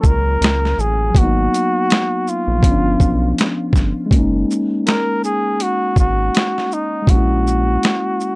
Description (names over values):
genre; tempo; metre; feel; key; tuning
lo-fi hip hop; 81 BPM; 4/4; swing 58% on 16ths; F# major; A4 = 440 Hz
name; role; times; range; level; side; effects
breathy flugelhorn; melody; 0.0-8.4 s; D#4 to A#4; -19 LUFS; equal; none
mellow tine electric piano; accompaniment; 0.0-8.4 s; F3 to E#4; -20 LUFS; left 1 dB; cassette tape
round analog bass; bass; 0.0-7.8 s; F#1 to C#2; -19 LUFS; equal; none
boom bap sampler-style drum kit; drums; 0.0-8.4 s; hi-hat, kick drum, shaker, snare drum; -15 LUFS; equal; vintage 12-bit sampler grit
room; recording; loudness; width
little or no reverb; dry, gritty hardware recording; -14 LUFS; side -26 dB against mid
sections
0.0-4.1 A section; 4.1-8.4 B section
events
none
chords
0.0 D#m9 (rootless); 1.2 G#m7; 2.6 G7#11; 4.1 F#6; 7.1 A#m7b5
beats
0.41 | 1.15 1.89 2.63 3.38 | 4.12 4.86 5.60 6.34 | 7.08 7.82